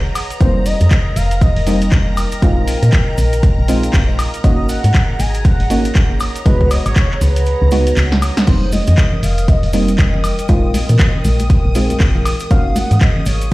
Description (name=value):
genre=deep house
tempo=119 BPM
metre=4/4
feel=swing 60% on 16ths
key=unclear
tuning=A4 = 440 Hz
part: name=warm velvety synth lead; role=melody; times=0.0-13.5 s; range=Cb5 to Ab5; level=-24 LUFS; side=equal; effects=chorus, tape echo
part: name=string machine, violins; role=texture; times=0.0-13.5 s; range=Bb5 to Eb6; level=-32 LUFS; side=equal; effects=ensemble chorus
part: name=warbly tape-like pad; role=texture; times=0.0-13.5 s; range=Ab4 to G5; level=-27 LUFS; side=left 1 dB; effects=chorus, built-in reverb, sidechain pumping
part: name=punchy analog drum machine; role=drums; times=0.2-13.5 s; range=crash cymbal, handclaps, hi-hat, snare drum, woodblock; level=-23 LUFS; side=equal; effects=none
part: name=cabasa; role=percussion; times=0.2-13.5 s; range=none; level=-37 LUFS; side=right 4 dB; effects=none
part: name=deep mellow chord stab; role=stabs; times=0.4-13.5 s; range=G3 to Gb4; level=-21 LUFS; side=right 1 dB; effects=chorus, sidechain pumping, digital delay
part: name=woody FM bass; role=bass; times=0.4-13.5 s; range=F1 to Bb2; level=-16 LUFS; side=equal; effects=sidechain pumping
part: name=electronic kick drum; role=drums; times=0.4-13.1 s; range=none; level=-12 LUFS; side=equal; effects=none
part: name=congas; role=percussion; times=8.7-13.2 s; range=none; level=-23 LUFS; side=left 1 dB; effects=none
room=digital ambience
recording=played on a big sound system in a bare room, stone room reverb, vinyl crackle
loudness=-12 LUFS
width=side -19 dB against mid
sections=0.0-13.5 A section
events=kick drops out 7.5-8.5; drum fill 8.1-8.5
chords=0.4 F9sus4; 2.4 Bb9sus4; 4.4 Ab9sus4; 6.5 Db9sus4; 8.5 F9sus4; 10.5 Bb9sus4; 12.5 Ab9sus4